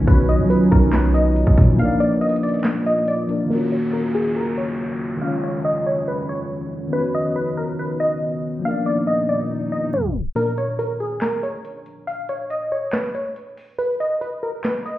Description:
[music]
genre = hip hop, trap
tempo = 140 BPM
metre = 4/4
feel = half-time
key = Eb minor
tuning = A4 = 440 Hz
[part]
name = glassy wavetable pluck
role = melody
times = 0.0-15.0 s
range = Ab4 to F5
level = -23 LUFS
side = equal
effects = chorus, phaser, low-pass filter, digital delay
[part]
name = bright tine electric piano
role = accompaniment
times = 0.0-10.4 s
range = D#3 to D5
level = -23 LUFS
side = left 1 dB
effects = medium stereo tremolo, low-pass filter
[part]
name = deep dark ambient pad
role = sustained chords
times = 0.0-10.3 s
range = Eb2 to D5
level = -28 LUFS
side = equal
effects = chorus, built-in reverb, low-pass filter
[part]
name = long sustained 808-style bass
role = bass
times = 0.0-1.8 s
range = B1 to F#3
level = -17 LUFS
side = equal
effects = none
[part]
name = trap drum kit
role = drums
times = 0.1-3.4, 10.4-15.0 s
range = handclaps, hi-hat, kick drum, snare drum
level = -18 LUFS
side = equal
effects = overdrive
[part]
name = downlifter and swell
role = sound effects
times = 3.5-10.4 s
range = none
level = -35 LUFS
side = equal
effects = none
[sound]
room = moderate recital hall reverb, RT60 1.4 s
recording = heard muffled through a wall, stone room reverb, EQ, tape stop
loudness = -18 LUFS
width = side -15 dB against mid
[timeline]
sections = 0.0-3.5 A section; 3.5-10.4 B section; 10.4-15.0 C section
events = break 1.8-3.5, 10.4-15.0; filter sweep 3.5-10.4; swell 6.9-10.4; tape stop 9.9-10.4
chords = 0.1 Badd9; 1.8 Bb; 3.5 Ebm7; 5.2 Dbadd9; 6.9 Badd9; 8.6 Bb; 10.4 N.C.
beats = | 0.08 0.50 0.93 1.36 | 1.79 2.22 2.65 3.08 | 3.50 3.93 4.36 4.79 | 5.22 5.65 6.08 6.50 | 6.93 7.36 7.79 8.22 | 8.65 9.08 9.50 9.93 | 10.36 10.79 11.22 11.65 | 12.08 12.50 12.93 13.36 | 13.79 14.22 14.65

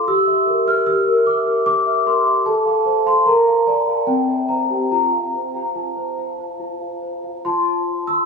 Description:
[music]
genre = classical, lullaby for celesta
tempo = 70-76 BPM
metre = 3/4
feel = rubato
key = F major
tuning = A4 = 438 Hz
[part]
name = large celesta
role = solo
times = 0.0-8.3 s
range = C4 to F6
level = -16 LUFS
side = equal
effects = lush chorus, tape echo
[sound]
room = wet plate reverb, RT60 2.8 s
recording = dreamy mix soaked in reverb, studio reverb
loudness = -16 LUFS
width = side -4 dB against mid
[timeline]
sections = 0.0-7.4 A section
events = none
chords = 0.1 Edim/G; 2.5 F/A; 3.3 Bbmaj7; 4.1 C7; 4.9 F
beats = | 0.08 0.87 1.67 | 2.46 3.26 4.07 | 4.91 5.75 6.59 | 7.44

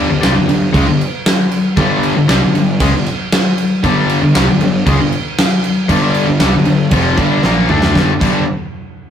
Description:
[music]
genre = hard rock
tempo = 116 BPM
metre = 4/4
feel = straight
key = unclear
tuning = A4 = 439 Hz
[part]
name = cranked stack guitar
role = riff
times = 0.0-8.4 s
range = F2 to D4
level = -17 LUFS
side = left 6 dB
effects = overdrive
[part]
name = high-gain distorted guitar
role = riff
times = 0.0-8.4 s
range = F2 to D4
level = -23 LUFS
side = equal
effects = none
[part]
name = tight distorted guitar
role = riff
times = 0.0-8.4 s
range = F2 to D4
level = -21 LUFS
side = right 5 dB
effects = distortion
[part]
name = fuzz picked electric bass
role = bass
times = 0.0-8.5 s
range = F1 to D2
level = -16 LUFS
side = right 1 dB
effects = overdrive
[part]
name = huge arena drum kit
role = drums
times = 0.2-8.3 s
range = crash cymbal, kick drum, snare drum, toms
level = -15 LUFS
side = equal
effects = none
[sound]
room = light reverb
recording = rough rehearsal-room recording, warm saturation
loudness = -11 LUFS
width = side -9 dB against mid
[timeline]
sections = 0.0-8.0 A section; 8.0-9.1 B section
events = drum fill 7.4-8.0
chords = 0.0 G5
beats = 0.22 0.74 1.25 | 1.77 2.29 2.80 3.32 | 3.83 4.35 4.86 5.38 | 5.89 6.41 6.92 7.44 | 7.96

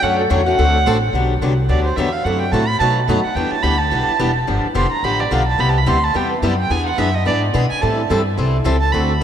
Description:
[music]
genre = acoustic string swing (jazz manouche)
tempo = 216 BPM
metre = 4/4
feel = swing 58% on 8ths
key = G major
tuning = A4 = 440 Hz
[part]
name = dark violin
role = second line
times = 0.0-9.2 s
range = A4 to C6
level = -20 LUFS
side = right 3 dB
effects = none
[part]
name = picked steel-string acoustic guitar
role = accompaniment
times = 0.0-9.2 s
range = B2 to B4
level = -25 LUFS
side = right 5 dB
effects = none
[part]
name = picked swing-style acoustic guitar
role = accompaniment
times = 0.0-9.1 s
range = B2 to A4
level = -21 LUFS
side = left 4 dB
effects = none
[part]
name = upright bass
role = bass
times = 0.0-9.2 s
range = E1 to B2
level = -19 LUFS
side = equal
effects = none
[sound]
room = wet cathedral reverb, RT60 5.9 s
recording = in a vast, echoing space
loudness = -15 LUFS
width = side -9 dB against mid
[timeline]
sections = 0.0-1.1 A section; 1.1-9.2 A section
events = violin solo 0.0-9.2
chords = 0.0 Dmaj7; 0.6 D7; 1.1 Gmaj7; 2.2 F#m7b5; 2.8 B7; 3.4 Em7; 4.5 G9; 5.6 Cmaj7; 6.7 E7; 7.8 Am7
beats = | 0.02 0.30 0.58 0.86 | 1.13 1.41 1.69 1.97 | 2.25 2.53 2.81 3.08 | 3.36 3.64 3.92 4.20 | 4.48 4.76 5.04 5.31 | 5.59 5.87 6.15 6.43 | 6.71 6.99 7.26 7.54 | 7.82 8.10 8.38 8.65 | 8.93 9.21

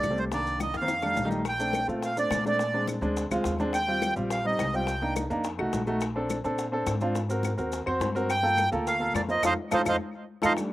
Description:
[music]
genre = Afro-Cuban jazz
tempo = 211 BPM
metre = 4/4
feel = straight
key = Bb major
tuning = A4 = 440 Hz
[part]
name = accordion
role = melody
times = 0.0-5.1, 8.3-10.5 s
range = C5 to G5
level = -27 LUFS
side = right 2 dB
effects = none
[part]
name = warm grand piano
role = accompaniment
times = 0.0-10.7 s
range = Eb3 to C5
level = -29 LUFS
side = equal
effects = none
[part]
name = upright bass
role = bass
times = 0.0-10.5 s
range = Bb1 to Bb2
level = -34 LUFS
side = equal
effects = none
[part]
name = bongos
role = percussion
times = 0.0-10.7 s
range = none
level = -38 LUFS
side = left 7 dB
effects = slapback echo
[part]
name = claves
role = percussion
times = 0.0-10.7 s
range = none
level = -37 LUFS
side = left 9 dB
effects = none
[part]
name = congas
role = percussion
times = 0.0-10.7 s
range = none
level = -38 LUFS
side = left 4 dB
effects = none
[part]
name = maracas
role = percussion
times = 0.0-10.7 s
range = none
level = -44 LUFS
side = right 3 dB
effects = none
[sound]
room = little or no reverb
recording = recorded outdoors, with no room sound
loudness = -25 LUFS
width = side -16 dB against mid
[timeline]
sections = 0.0-1.5 A section; 1.5-10.6 B section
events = drum fill 0.7-1.5; band accent 9.4-10.6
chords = 0.3 Cm7; 0.9 F13; 1.5 Bbmaj9; 2.6 Bb7; 3.7 Eb69; 4.9 Cm7; 5.4 F7b9; 6.0 Bbmaj9; 7.2 Ab9; 8.3 Gm9; 9.4 F7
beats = 0.04 | 0.32 0.61 0.89 1.18 | 1.46 1.75 2.03 2.32 | 2.60 2.88 3.17 3.46 | 3.74 4.03 4.31 4.59 | 4.88 5.16 5.45 5.73 | 6.02 6.30 6.59 6.87 | 7.16 7.44 7.73 8.01 | 8.29 8.58 8.86 9.15 | 9.43 9.72 10.00 10.29 | 10.57

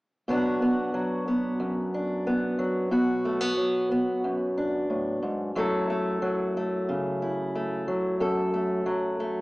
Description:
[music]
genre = folk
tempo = 91 BPM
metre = 4/4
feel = straight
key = unclear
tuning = A4 = 440 Hz
[part]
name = fingerpicked acoustic archtop guitar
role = accompaniment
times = 0.3-9.4 s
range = F#2 to A4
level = -25 LUFS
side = equal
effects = none
[sound]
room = wet large studio reverb, RT60 1.0 s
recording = heard from further back in the room, small speaker sound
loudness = -25 LUFS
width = side -20 dB against mid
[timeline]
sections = 0.3-9.4 A section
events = none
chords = 0.3 Bm; 5.6 F#m7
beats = | 0.29 0.95 1.61 2.27 | 2.93 3.59 4.25 4.91 | 5.57 6.22 6.88 7.54 | 8.20 8.86

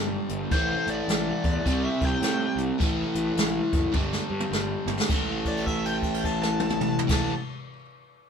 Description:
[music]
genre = blues rock power trio and southern rock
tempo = 105 BPM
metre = 4/4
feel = swing 62% on 8ths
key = A minor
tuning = A4 = 440 Hz
[part]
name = overdriven electric guitar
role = riff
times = 0.0-7.3 s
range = G2 to C4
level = -28 LUFS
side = equal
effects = none
[part]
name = fuzz picked electric bass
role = bass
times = 0.0-7.3 s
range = F#1 to A2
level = -32 LUFS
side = equal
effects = overdrive
[part]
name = jazz brush drum kit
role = drums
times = 0.3-7.2 s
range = crash cymbal, hi-hat, kick drum, snare drum, toms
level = -27 LUFS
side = equal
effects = none
[part]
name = bluesy overdriven lead guitar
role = melody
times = 0.5-7.3 s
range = C5 to A5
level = -31 LUFS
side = left 1 dB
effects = distortion
[sound]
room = light reverb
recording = band playing live in one room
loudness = -23 LUFS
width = side -7 dB against mid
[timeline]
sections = 0.0-5.1 A section; 5.1-7.4 B section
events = drum fill 3.9-5.1; held note 5.1-7.0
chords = 0.0 G5; 0.5 A5; 1.7 C5; 2.8 A5; 3.9 G5; 5.1 A5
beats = | 0.51 1.09 1.66 2.23 | 2.81 3.38 3.95 4.52 | 5.09 5.67 6.24 6.81

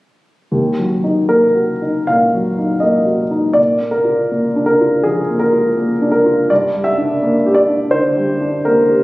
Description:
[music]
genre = neoclassical minimalist piano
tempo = 73-85 BPM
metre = 4/4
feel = rubato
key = unclear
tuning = A4 = 440 Hz
[part]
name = warm upright piano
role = solo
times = 0.5-9.0 s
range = Eb2 to F5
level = -12 LUFS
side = equal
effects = none
[sound]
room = light reverb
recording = recorded on a phone in the room, studio reverb, compression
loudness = -12 LUFS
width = side -19 dB against mid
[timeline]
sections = 0.5-9.0 A section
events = none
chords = 0.5 Ebm; 3.6 Bb; 6.5 Gm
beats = | 0.52 1.27 2.07 2.82 | 3.57 4.31 5.05 5.78 | 6.50 7.21 7.93 8.66

